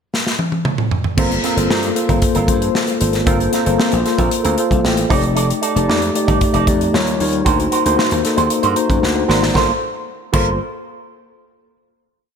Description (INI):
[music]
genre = polished 1980s jazz-funk pop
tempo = 115 BPM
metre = 4/4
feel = straight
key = G minor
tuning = A4 = 437 Hz
[part]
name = modern studio drum kit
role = drums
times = 0.1-10.5 s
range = crash cymbal, hi-hat, kick drum, snare drum, toms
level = -19 LUFS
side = equal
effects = gated reverb
[part]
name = mellow tine electric piano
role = accompaniment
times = 1.2-10.6 s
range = G3 to Bb5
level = -18 LUFS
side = left 3 dB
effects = medium stereo tremolo, lush chorus
[part]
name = electric guitar with an envelope filter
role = riff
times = 1.2-10.5 s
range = C4 to D5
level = -22 LUFS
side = right 8 dB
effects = lush chorus
[part]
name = slap bass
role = bass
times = 1.2-10.6 s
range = F1 to G2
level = -20 LUFS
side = equal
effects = none
[sound]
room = moderate lush hall reverb, RT60 1.8 s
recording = bright 1980s-style digital production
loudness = -14 LUFS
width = side -7 dB against mid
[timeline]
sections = 0.0-1.2 pickup bar; 1.2-9.6 verse; 9.6-11.6 final chord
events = drum fill 0.1-1.2, 9.0-9.6; tine electric piano fill 4.3-5.4, 8.5-9.6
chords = 0.0 N.C.; 1.2 Gm11; 5.1 F13; 6.9 Eb9; 7.5 D7b9b13; 9.6 Gm11